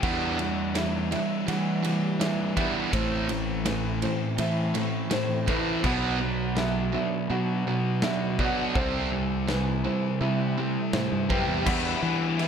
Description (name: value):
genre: post-rock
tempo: 82 BPM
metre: 4/4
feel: straight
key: E minor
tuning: A4 = 441 Hz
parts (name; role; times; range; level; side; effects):
- pedal steel guitar; sustained chords; 0.0-12.5 s; E3 to F#5; -39 LUFS; right 2 dB; none
- electric guitar through a small old amp; arpeggios; 0.0-12.5 s; E2 to G4; -35 LUFS; left 3 dB; ensemble chorus, slapback echo
- felt-muted upright piano; arpeggios; 0.0-12.5 s; B4 to F#5; -35 LUFS; right 3 dB; slapback echo
- fuzz guitar; riff; 0.0-11.6 s; A2 to C4; -30 LUFS; right 11 dB; distortion
- thick fuzz guitar; riff; 0.0-12.5 s; A2 to E4; -30 LUFS; left 10 dB; distortion
- fuzz fingered electric bass; bass; 0.0-12.5 s; A1 to E3; -31 LUFS; equal; overdrive
- big rock drum kit; drums; 0.0-12.5 s; crash cymbal, kick drum, ride cymbal, snare drum; -32 LUFS; equal; none
room: light reverb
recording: none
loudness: -24 LUFS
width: side -7 dB against mid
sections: 0.0-11.7 A section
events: build-up 0.0-11.7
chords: 0.0 Em7; 2.9 Am; 5.8 Bm; 8.8 C6; 11.7 Em7